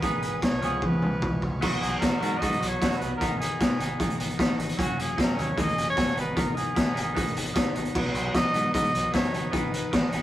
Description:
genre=indie rock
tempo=152 BPM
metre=4/4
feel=straight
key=unclear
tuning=A4 = 437 Hz
part: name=warm trumpet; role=melody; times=0.0-10.2 s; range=F#4 to D#5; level=-30 LUFS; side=equal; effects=none
part: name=combo organ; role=sustained chords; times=0.0-1.6, 8.0-10.2 s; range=B4 to D#6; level=-40 LUFS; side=right 2 dB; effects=none
part: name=crunchy overdriven guitar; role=riff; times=0.0-10.2 s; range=D#3 to G#4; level=-30 LUFS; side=equal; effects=none
part: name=growling picked electric bass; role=bass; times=0.0-10.2 s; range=F#1 to B2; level=-35 LUFS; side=equal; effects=overdrive
part: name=raw garage drum kit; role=drums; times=0.0-10.2 s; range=crash cymbal, hi-hat, kick drum, snare drum, toms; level=-26 LUFS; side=equal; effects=none
room=moderate small room reverb, RT60 0.5 s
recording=rough rehearsal-room recording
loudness=-23 LUFS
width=side -13 dB against mid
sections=0.0-1.6 A section; 1.6-10.2 B section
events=drum fill 0.8-1.6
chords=0.0 G#m; 0.6 C#7; 1.6 Bmaj7; 3.2 G#m; 4.8 F#6; 6.2 G#m; 8.0 Bmaj7; 9.5 G#m7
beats=| 0.03 0.42 0.82 1.22 | 1.62 2.01 2.41 2.81 | 3.20 3.60 4.00 4.39 | 4.79 5.18 5.58 5.97 | 6.37 6.76 7.16 7.56 | 7.95 8.35 8.75 9.14 | 9.54 9.94

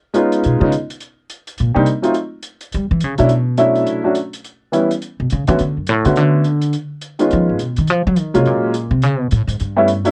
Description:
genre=jazz piano trio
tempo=210 BPM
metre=4/4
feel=swing 62% on 8ths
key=unclear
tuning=A4 = 439 Hz
part: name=warm upright piano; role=melody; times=0.1-10.1 s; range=D3 to F#4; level=-17 LUFS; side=equal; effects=none
part: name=hi-hat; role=drums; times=0.1-10.1 s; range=none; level=-36 LUFS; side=equal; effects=vintage 12-bit sampler grit
part: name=upright bass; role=bass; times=0.5-10.0 s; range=F#2 to G3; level=-19 LUFS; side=equal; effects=none
room=light reverb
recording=worn, warbling old tape, cassette tape, warbly pitch drift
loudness=-17 LUFS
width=mono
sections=0.0-3.3 A section; 3.3-10.1 A section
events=upright bass solo 0.0-10.1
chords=0.0 Db9; 1.0 C7(no3); 2.2 N.C.; 2.7 A7 (rootless); 3.3 Dmaj7; 4.4 C#m7b5; 5.0 N.C.; 5.6 Bm9; 6.7 N.C.; 7.3 C#7; 7.9 F#maj7; 9.0 A7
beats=0.15 0.43 0.72 | 1.01 1.29 1.58 1.86 | 2.15 2.44 2.72 3.01 | 3.30 3.58 3.87 4.16 | 4.44 4.73 5.02 5.30 | 5.59 5.88 6.16 6.45 | 6.73 7.02 7.31 7.59 | 7.88 8.17 8.45 8.74 | 9.02 9.31 9.60 9.88

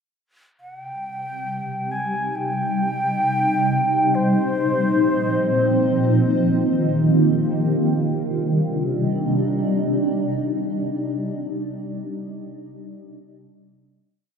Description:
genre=ambient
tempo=free time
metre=none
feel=none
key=C minor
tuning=A4 = 439 Hz
part: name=mellow shakuhachi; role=melody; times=0.6-6.0 s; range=C5 to Ab5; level=-23 LUFS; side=left 1 dB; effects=dub echo
part: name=shimmering ambient pad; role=sustained chords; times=1.5-11.7 s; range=Bb2 to Eb4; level=-20 LUFS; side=equal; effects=chorus, built-in reverb, phaser
room=wet spring reverb, RT60 2.6 s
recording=echo-heavy mix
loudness=-19 LUFS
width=side -6 dB against mid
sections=0.6-7.8 A section; 7.8-11.4 final chord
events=fade-in on shakuhachi 0.6-7.8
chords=0.6 Cm; 4.2 Bbsus24; 6.0 Eb; 7.8 Cm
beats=free time

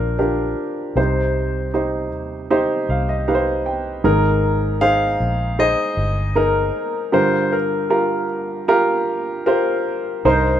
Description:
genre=pop ballad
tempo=78 BPM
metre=4/4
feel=straight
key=unclear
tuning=A4 = 439 Hz
part: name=warm concert grand piano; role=melody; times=0.0-10.6 s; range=Bb4 to F5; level=-21 LUFS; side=left 4 dB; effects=none
part: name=warm upright piano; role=accompaniment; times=0.0-10.6 s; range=G2 to G5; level=-20 LUFS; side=right 3 dB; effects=none
part: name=vintage muted fingered electric bass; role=bass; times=0.0-10.6 s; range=G1 to Eb2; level=-22 LUFS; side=equal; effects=none
room=light reverb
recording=rough home demo mix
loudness=-17 LUFS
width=side -10 dB against mid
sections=0.0-10.2 A section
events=upright piano fill 2.5-4.0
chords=0.0 Bb; 1.0 Cm; 4.0 Absus2; 7.1 Gm7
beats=0.19 | 0.97 1.74 2.51 3.27 | 4.04 4.81 5.58 6.35 | 7.13 7.91 8.68 9.46 | 10.25

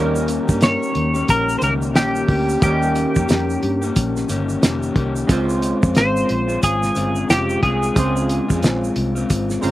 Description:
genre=indie pop, bedroom pop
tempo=90 BPM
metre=4/4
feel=swing 60% on 16ths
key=unclear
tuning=A4 = 437 Hz
part: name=chorused retro synth keys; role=accompaniment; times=0.0-9.7 s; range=G3 to Bb5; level=-26 LUFS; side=right 4 dB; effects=slapback echo
part: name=electric guitar through a small old amp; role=accompaniment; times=0.0-9.7 s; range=Db3 to G4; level=-22 LUFS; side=left 3 dB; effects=warbly pitch drift
part: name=vintage muted fingered electric bass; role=bass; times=0.0-9.7 s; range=F1 to G2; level=-24 LUFS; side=equal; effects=none
part: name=egg shaker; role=percussion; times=0.2-9.7 s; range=none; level=-34 LUFS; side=right 5 dB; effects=none
part: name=cloth-damped thuddy drum kit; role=drums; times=0.3-9.7 s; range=hi-hat, kick drum, snare drum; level=-18 LUFS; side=equal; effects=none
part: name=twelve-string electric guitar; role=melody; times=0.6-8.9 s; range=G4 to Db5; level=-21 LUFS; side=equal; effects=slapback echo
room=little or no reverb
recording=recorded outdoors, with no room sound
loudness=-16 LUFS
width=side -15 dB against mid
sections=0.0-9.7 A section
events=synth keys fill 9.3-9.7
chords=0.0 Eb7; 5.3 Dbmaj7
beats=0.62 1.29 1.96 | 2.62 3.29 3.96 4.63 | 5.29 5.96 6.63 7.30 | 7.96 8.63 9.30

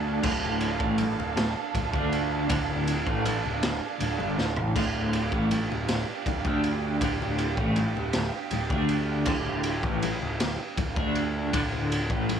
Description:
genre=psychedelic rock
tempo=53 BPM (dotted quarters)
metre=6/8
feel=straight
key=D minor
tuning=A4 = 440 Hz
part: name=muted chamber string section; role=sustained chords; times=0.0-12.4 s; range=D4 to F5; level=-33 LUFS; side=right 10 dB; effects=none
part: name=clean electric guitar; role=riff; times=0.0-12.4 s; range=D2 to D4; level=-29 LUFS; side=equal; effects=tremolo, double-tracked left and right
part: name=fuzz picked electric bass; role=bass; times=0.0-12.4 s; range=D1 to D2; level=-32 LUFS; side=equal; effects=overdrive
part: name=raw garage drum kit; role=drums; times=0.2-12.4 s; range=crash cymbal, kick drum, ride cymbal, snare drum, toms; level=-30 LUFS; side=equal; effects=none
part: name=congas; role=percussion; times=0.3-12.4 s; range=none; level=-38 LUFS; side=left 12 dB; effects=none
room=light reverb, small room reverb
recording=1960s-style stereo with parts hard left and right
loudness=-25 LUFS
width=side -8 dB against mid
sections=0.0-12.4 A section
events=drum fill 4.4-4.8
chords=0.0 Dm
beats=| 0.24 1.37 | 2.50 3.63 | 4.76 5.89 | 7.02 8.15 | 9.28 10.41 | 11.54

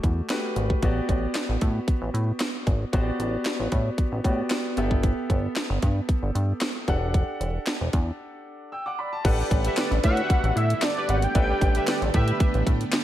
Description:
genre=early-eighties boogie funk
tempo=114 BPM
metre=4/4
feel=straight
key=unclear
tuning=A4 = 441 Hz
part: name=bright concert grand piano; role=accompaniment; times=0.0-13.0 s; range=A3 to E6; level=-30 LUFS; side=left 1 dB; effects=none
part: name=chorused synth bass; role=bass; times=0.0-12.8 s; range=E1 to A2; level=-25 LUFS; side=equal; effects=none
part: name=garage drum kit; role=drums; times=0.0-13.0 s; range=crash cymbal, handclaps, hi-hat, kick drum, snare drum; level=-24 LUFS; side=equal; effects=none
part: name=string machine, full ensemble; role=sustained chords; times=9.2-13.0 s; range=D3 to G4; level=-34 LUFS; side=right 2 dB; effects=ensemble chorus
part: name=analog synth brass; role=second line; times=9.4-12.6 s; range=G4 to E5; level=-31 LUFS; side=right 2 dB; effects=chorus, slapback echo
part: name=fat analog lead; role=melody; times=10.0-12.0 s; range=D5 to G5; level=-28 LUFS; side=equal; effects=chorus, slapback echo, tape echo
room=light reverb, digital ambience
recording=none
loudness=-22 LUFS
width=side -13 dB against mid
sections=0.0-9.2 A section; 9.2-13.0 B section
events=break 8.2-9.2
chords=0.0 Em11; 0.8 A13sus4; 4.8 G69; 6.9 Em11; 9.2 A13sus4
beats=0.30 | 0.82 1.35 1.88 2.40 | 2.93 3.46 3.98 4.51 | 5.04 5.56 6.09 6.62 | 7.14 7.67 8.19 8.72 | 9.25 9.77 10.30 10.82 | 11.35 11.88 12.40 12.93

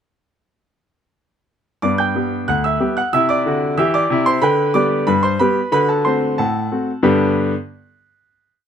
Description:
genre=ragtime piano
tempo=92 BPM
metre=2/4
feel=straight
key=G major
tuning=A4 = 438 Hz
part: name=bright concert grand piano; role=solo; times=1.8-7.5 s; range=D2 to G6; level=-15 LUFS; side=equal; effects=none
room=light reverb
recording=close, detailed microphones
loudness=-15 LUFS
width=side -8 dB against mid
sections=1.8-7.0 A section; 7.0-8.4 final chord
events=none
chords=1.8 G; 3.1 C; 4.4 G/D; 5.7 D7; 7.0 G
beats=| 1.83 2.48 | 3.13 3.79 | 4.43 5.08 | 5.74 6.39 | 7.05

